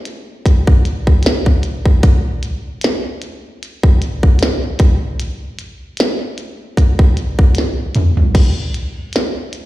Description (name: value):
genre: R&B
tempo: 76 BPM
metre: 4/4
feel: swing 55% on 16ths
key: none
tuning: none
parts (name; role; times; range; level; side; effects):
- minimal click drum kit; drums; 0.1-9.7 s; crash cymbal, hi-hat, kick drum, snare drum, toms; -12 LUFS; equal; none
room: light reverb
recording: live gig heard through the venue's PA, recital hall reverb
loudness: -13 LUFS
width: side -16 dB against mid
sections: 0.0-8.3 A section; 8.3-9.7 B section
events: drum fill 7.6-8.3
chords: none